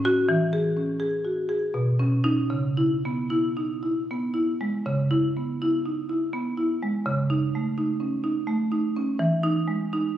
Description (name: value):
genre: classical, contemporary piece for solo marimba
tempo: 74-85 BPM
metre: 3/4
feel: rubato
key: C# minor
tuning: A4 = 440 Hz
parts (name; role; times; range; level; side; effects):
- marimba with medium hard mallets; solo; 0.0-10.2 s; A2 to G#4; -23 LUFS; equal; none
room: moderate recital hall reverb, RT60 1.7 s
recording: recorded on a phone in the room, studio reverb, nothing above 11.0 kHz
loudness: -23 LUFS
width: side -11 dB against mid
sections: 0.0-4.9 A section; 4.9-10.2 A section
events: none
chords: 0.3 E69; 1.7 Badd9; 2.5 C#m7; 7.1 C#sus2; 9.2 Emaj7